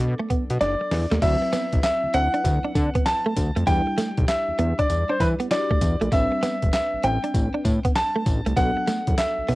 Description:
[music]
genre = R&B, new jack swing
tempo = 98 BPM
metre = 4/4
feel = swing 65% on 16ths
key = unclear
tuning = A4 = 441 Hz
[part]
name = clear baby grand piano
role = melody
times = 0.0-9.6 s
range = B4 to A5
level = -24 LUFS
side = equal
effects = cassette tape
[part]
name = FM electric piano with soft pad layer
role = accompaniment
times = 0.0-9.6 s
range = F#3 to B4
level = -32 LUFS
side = left 2 dB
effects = chorus, cassette tape
[part]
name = direct-recorded clean electric guitar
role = riff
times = 0.0-9.6 s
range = A3 to E4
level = -26 LUFS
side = right 2 dB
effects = analog chorus, cassette tape
[part]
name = fat analog bass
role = bass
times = 0.0-9.6 s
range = E1 to E3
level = -24 LUFS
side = equal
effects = none
[part]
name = boom bap sampler-style drum kit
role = drums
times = 0.0-9.6 s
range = crash cymbal, handclaps, hi-hat, kick drum, snare drum, tambourine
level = -25 LUFS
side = equal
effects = cassette tape
[sound]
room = little or no reverb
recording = home recording on cassette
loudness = -20 LUFS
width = side -19 dB against mid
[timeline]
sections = 0.0-1.2 A section; 1.2-9.6 B section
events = drum fill 0.6-1.2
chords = 0.0 Bm7; 1.2 D13; 3.7 Em9; 6.1 Am11; 8.6 Bm7

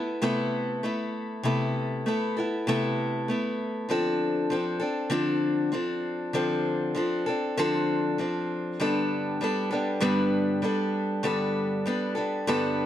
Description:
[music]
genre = rock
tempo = 98 BPM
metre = 4/4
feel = straight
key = unclear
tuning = A4 = 440 Hz
[part]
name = picked steel-string acoustic guitar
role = solo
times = 0.0-12.9 s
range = G2 to A4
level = -25 LUFS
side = left 1 dB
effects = none
[sound]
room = light reverb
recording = dark, warm production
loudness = -25 LUFS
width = side -11 dB against mid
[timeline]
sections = 0.0-12.9 A section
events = none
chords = 0.0 Amadd9/C; 3.9 Dm7; 8.8 Gadd9

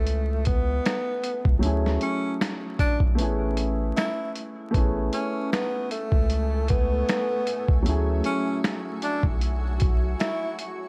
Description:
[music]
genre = lo-fi hip hop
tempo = 77 BPM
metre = 4/4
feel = swing 56% on 16ths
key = A major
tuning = A4 = 440 Hz
[part]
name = breathy tenor saxophone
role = melody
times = 0.0-10.6 s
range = A3 to E4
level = -31 LUFS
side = equal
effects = none
[part]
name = dark upright piano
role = accompaniment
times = 0.0-10.9 s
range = F#3 to G#4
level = -33 LUFS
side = equal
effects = none
[part]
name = soft dub sub bass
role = bass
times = 0.0-10.2 s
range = A1 to D2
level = -28 LUFS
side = equal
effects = none
[part]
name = boom bap sampler-style drum kit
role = drums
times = 0.1-10.8 s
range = finger snaps, hi-hat, kick drum, snare drum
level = -27 LUFS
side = equal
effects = vintage 12-bit sampler grit
[part]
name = granular cloud pad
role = sustained chords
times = 6.0-10.9 s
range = A3 to C#6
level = -38 LUFS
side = equal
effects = built-in reverb
[sound]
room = light reverb, digital ambience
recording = vinyl crackle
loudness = -25 LUFS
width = mono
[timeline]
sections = 0.0-4.7 A section; 4.7-10.9 A section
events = break 3.2-4.7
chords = 0.0 Amaj7; 1.6 Dmaj9#11; 3.2 Amaj9; 7.9 Dmaj9#11 (rootless)

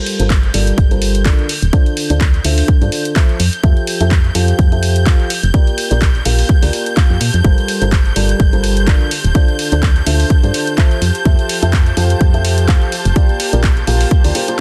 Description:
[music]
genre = piano house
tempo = 126 BPM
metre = 4/4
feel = swing 55% on 16ths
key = unclear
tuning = A4 = 444 Hz
[part]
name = warm studio violin section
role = sustained chords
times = 0.0-14.6 s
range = G6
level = -27 LUFS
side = equal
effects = sidechain pumping
[part]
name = clear upright piano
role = riff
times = 0.0-14.6 s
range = D3 to F5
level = -23 LUFS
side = equal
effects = sidechain pumping, low-pass filter, delay
[part]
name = punchy analog drum machine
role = drums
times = 0.1-14.6 s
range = handclaps, hi-hat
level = -24 LUFS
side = equal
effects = none
[part]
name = solid FM bass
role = bass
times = 0.2-14.3 s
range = D1 to Bb2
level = -17 LUFS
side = equal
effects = sidechain pumping
[part]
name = electronic kick drum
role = drums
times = 0.3-14.2 s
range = none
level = -14 LUFS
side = equal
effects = overdrive
[part]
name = muted studio string section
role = texture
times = 5.5-14.6 s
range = F4 to A5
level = -32 LUFS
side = equal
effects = sidechain pumping
[sound]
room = studio reverb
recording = dense, heavily limited modern master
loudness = -13 LUFS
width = mono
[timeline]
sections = 0.0-14.6 A section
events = fade-in on string section 0.0-14.6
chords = 0.0 Gm11; 1.5 Dm7; 3.4 Fmaj9; 5.5 Bb6; 7.4 Gm11; 9.1 Dm7; 11.0 Fmaj9; 13.2 Gm11

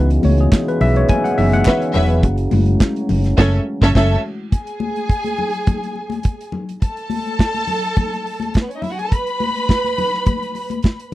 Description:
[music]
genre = disco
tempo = 105 BPM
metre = 4/4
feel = straight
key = unclear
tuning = A4 = 443 Hz
[part]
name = tine electric piano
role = accompaniment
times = 0.0-4.5 s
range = E3 to G#5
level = -20 LUFS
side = left 2 dB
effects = overdrive, analog chorus
[part]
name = dark French horn section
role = sustained chords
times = 0.0-4.5 s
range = C#3 to F#4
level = -23 LUFS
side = right 2 dB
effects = none
[part]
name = hollow-body short-scale fingered electric bass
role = bass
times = 0.0-4.2 s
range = E1 to C#2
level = -15 LUFS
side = equal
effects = none
[part]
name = modern studio drum kit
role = drums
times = 0.1-11.1 s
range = crash cymbal, hi-hat, kick drum, snare drum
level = -15 LUFS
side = equal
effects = none
[part]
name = congas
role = percussion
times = 0.2-10.8 s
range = none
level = -26 LUFS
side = left 4 dB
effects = none
[part]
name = group handclap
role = percussion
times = 0.5-3.0 s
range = none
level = -30 LUFS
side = right 3 dB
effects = none
[part]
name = dark studio string section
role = second line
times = 1.7-11.1 s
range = B3 to B5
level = -21 LUFS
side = right 1 dB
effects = none
[sound]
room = little or no reverb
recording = dry, close 1970s-style studio recording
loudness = -15 LUFS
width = side -16 dB against mid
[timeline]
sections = 0.0-4.5 A section; 4.5-11.1 B section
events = tine electric piano solo 0.0-4.5; band accent 3.4-4.5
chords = 0.0 C#m7; 2.2 F#m7; 4.5 N.C.

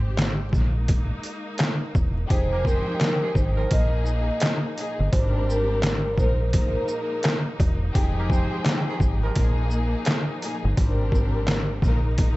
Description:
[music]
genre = hip hop, boom-bap hip-hop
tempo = 85 BPM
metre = 4/4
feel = swing 63% on 16ths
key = unclear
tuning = A4 = 440 Hz
[part]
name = bright studio string section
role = sustained chords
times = 0.0-12.4 s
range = F3 to G5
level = -36 LUFS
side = equal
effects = high-pass filter, low-pass filter
[part]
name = deep dub fingered electric bass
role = bass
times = 0.0-12.4 s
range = E1 to Bb1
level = -24 LUFS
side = equal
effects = none
[part]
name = trip hop sampler-style drum kit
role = drums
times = 0.2-12.4 s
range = handclaps, hi-hat, kick drum, shaker, snare drum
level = -23 LUFS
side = equal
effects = overdrive
[part]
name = vibraphone with soft mallets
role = melody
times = 2.3-7.2 s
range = Bb4 to Eb5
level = -28 LUFS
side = right 1 dB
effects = high-pass filter, low-pass filter
[part]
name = dark studio string section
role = accompaniment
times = 2.3-12.4 s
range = Ab2 to Bb4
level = -30 LUFS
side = left 2 dB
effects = cassette tape, high-pass filter, low-pass filter
[part]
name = mellow horn section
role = stabs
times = 2.5-9.7 s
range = Eb3 to C5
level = -36 LUFS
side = right 4 dB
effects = high-pass filter, low-pass filter, tape echo
[sound]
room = small room ambience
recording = dark, warm production, vinyl crackle, nothing above 8.0 kHz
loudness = -21 LUFS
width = side -19 dB against mid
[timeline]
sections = 0.0-12.4 A section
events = break 0.0-2.3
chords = 0.0 Abmaj7; 0.5 Bb7sus4; 2.3 Fm9; 3.7 Bb7sus4; 5.1 Abmaj9#11; 6.2 Bb7sus4; 8.0 Fm9; 9.4 Bb7sus4; 10.8 Abmaj9#11; 11.8 Bb7sus4

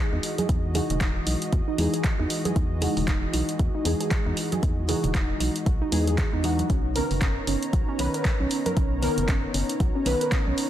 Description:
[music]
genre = deep house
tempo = 116 BPM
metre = 4/4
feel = swing 59% on 16ths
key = E lydian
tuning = A4 = 438 Hz
[part]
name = warm analog pad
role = sustained chords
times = 0.1-10.7 s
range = E3 to A#5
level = -33 LUFS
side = left 1 dB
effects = chorus, vintage 12-bit sampler grit, sidechain pumping
[part]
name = deep mellow chord stab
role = stabs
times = 0.0-10.7 s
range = D#3 to B4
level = -30 LUFS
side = left 1 dB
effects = ensemble chorus, sidechain pumping, tape echo
[part]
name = warbly dusty pluck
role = arpeggios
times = 0.1-10.5 s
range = C#4 to A#4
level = -31 LUFS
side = right 3 dB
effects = chorus, sidechain pumping, tape echo
[part]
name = organ-like FM bass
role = bass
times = 0.1-10.5 s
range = E1 to E2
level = -28 LUFS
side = equal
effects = sidechain pumping
[part]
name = punchy analog drum machine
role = drums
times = 0.2-10.7 s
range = handclaps, hi-hat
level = -32 LUFS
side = equal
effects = none
[part]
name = congas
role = percussion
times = 0.4-9.3 s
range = none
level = -33 LUFS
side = right 3 dB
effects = none
[part]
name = electronic kick drum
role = drums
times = 0.5-10.4 s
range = none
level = -25 LUFS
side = equal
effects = none
[sound]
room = light reverb, digital ambience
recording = dense, heavily limited modern master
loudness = -22 LUFS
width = side -12 dB against mid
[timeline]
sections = 0.0-10.7 A section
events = none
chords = 0.0 Emaj9; 6.7 Bmaj9

